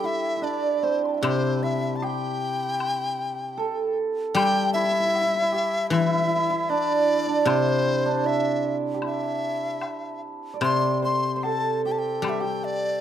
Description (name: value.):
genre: chinese traditional, Chinese chamber ensemble.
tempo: 77 BPM.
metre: 4/4.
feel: rubato.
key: C gong mode.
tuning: A4 = 440 Hz.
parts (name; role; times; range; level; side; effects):
mellow large dizi; melody; 0.0-13.0 s; C5 to C6; -26 LUFS; left 1 dB; none.
hammered dulcimer; second line; 0.0-13.0 s; C4 to D5; -26 LUFS; right 4 dB; none.
guzheng; accompaniment; 0.0-13.0 s; C3 to G3; -28 LUFS; left 4 dB; none.
woodblock; percussion; 1.2-12.4 s; none; -33 LUFS; left 4 dB; none.
room: light reverb.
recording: close, detailed microphones.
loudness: -22 LUFS.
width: side -10 dB against mid.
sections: 0.0-13.0 A section.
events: none.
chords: none.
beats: 0.45 | 1.25 2.04 2.81 3.59 | 4.37 5.15 5.92 6.70 | 7.47 8.24 9.03 9.82 | 10.63 11.44 12.24.